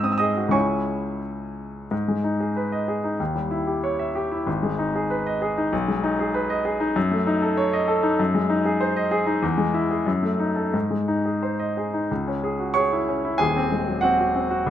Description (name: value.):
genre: classical, virtuoso piano study.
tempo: 86-98 BPM.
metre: 2/4.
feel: rubato.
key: G# minor.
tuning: A4 = 440 Hz.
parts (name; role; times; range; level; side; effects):
clear baby grand piano; solo; 0.0-14.7 s; D#1 to E6; -21 LUFS; equal; none.
room: moderate recital hall reverb, RT60 1.3 s.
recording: close, detailed microphones.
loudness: -21 LUFS.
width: side -10 dB against mid.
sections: 0.0-1.9 A section; 1.9-12.1 B section; 12.1-14.7 A section.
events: none.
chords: 0.0 G#7; 0.5 C#m; 1.9 G#m; 3.2 D#7b9; 4.5 G#m; 5.7 G#m/B; 7.0 D#m7b5/F#; 8.2 G#7/F#; 9.4 E; 10.1 D#dim/F#; 10.7 G#; 12.1 C#m; 13.4 G#7/D#.